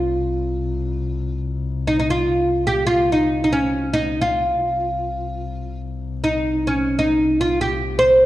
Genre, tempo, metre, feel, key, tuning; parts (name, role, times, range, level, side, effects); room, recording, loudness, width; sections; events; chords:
Arabic maqam ensemble; free time; C maqam kurd; A4 = 440 Hz
oud; melody; 0.0-8.3 s; Db4 to C5; -18 LUFS; right 1 dB
warm double bass; drone; 0.0-8.3 s; C2; -26 LUFS; left 2 dB
wet recital hall reverb, RT60 1.5 s; dark, warm production; -18 LUFS; side -15 dB against mid
0.0-8.3 A section